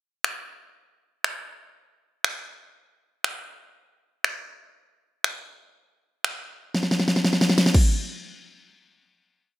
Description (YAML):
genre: dance-pop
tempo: 120 BPM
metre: 4/4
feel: straight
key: none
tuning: none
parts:
  - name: pop drum kit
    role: drums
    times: 0.2-7.9 s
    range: crash cymbal, finger snaps, kick drum, snare drum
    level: -21 LUFS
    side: equal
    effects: none
room: light reverb, digital ambience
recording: bright 1980s-style digital production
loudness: -22 LUFS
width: side -17 dB against mid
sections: 0.0-7.7 breakdown; 7.7-9.6 final hit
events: drum fill 6.7-7.7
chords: none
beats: 0.24 0.74 1.25 | 1.75 2.25 2.75 3.25 | 3.75 4.25 4.75 5.25 | 5.75 6.25 6.75 7.25 | 7.75